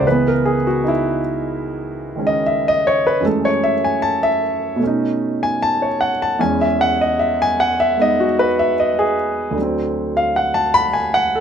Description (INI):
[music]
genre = solo jazz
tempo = 76 BPM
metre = 4/4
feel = swing 67% on 8ths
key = unclear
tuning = A4 = 440 Hz
[part]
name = warm grand piano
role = solo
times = 0.0-11.4 s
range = C#2 to B5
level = -15 LUFS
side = equal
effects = none
[sound]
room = light reverb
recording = none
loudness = -15 LUFS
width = side -8 dB against mid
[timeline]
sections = 0.0-11.4 A section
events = grand piano solo 0.0-11.4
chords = 0.1 C#m7; 3.2 F#m9; 4.8 B9; 6.4 E6; 9.6 D7